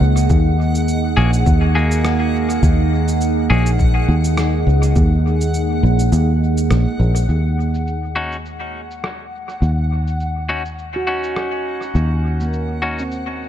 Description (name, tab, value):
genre	ambient dub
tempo	103 BPM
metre	4/4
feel	swing 56% on 16ths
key	Eb minor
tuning	A4 = 442 Hz
part	deep dark ambient pad	sustained chords	0.0-13.5 s	Bb3 to Eb5	-22 LUFS	right 4 dB	chorus, built-in reverb
part	fingered electric bass	bass	0.0-13.5 s	Bb1 to Eb2	-16 LUFS	equal	none
part	backwards swelling texture	texture	0.0-13.5 s	Gb5	-29 LUFS	left 2 dB	built-in reverb
part	electronic cabasa and rim click	drums	0.2-13.2 s	none	-30 LUFS	equal	overdrive, low-pass filter on perc, studio reverb, low-pass filter on snare, dub echo
part	electronic kick drum	drums	0.3-5.1 s	none	-17 LUFS	equal	overdrive, studio reverb
part	clean electric guitar	stabs	1.2-3.7, 8.2-13.0 s	Bb3 to Ab4	-24 LUFS	left 2 dB	dub echo
part	handpan	arpeggios	11.0-13.5 s	Bb3 to Gb4	-25 LUFS	right 2 dB	low-pass filter, dub echo
room	little or no reverb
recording	dark, warm production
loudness	-15 LUFS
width	side -10 dB against mid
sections	0.0-7.3 A section; 7.3-13.5 B section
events	kick drops out 6.1-7.3; filter sweep on ambient pad 7.3-13.5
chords	0.0 Gbadd9; 7.3 Ebm7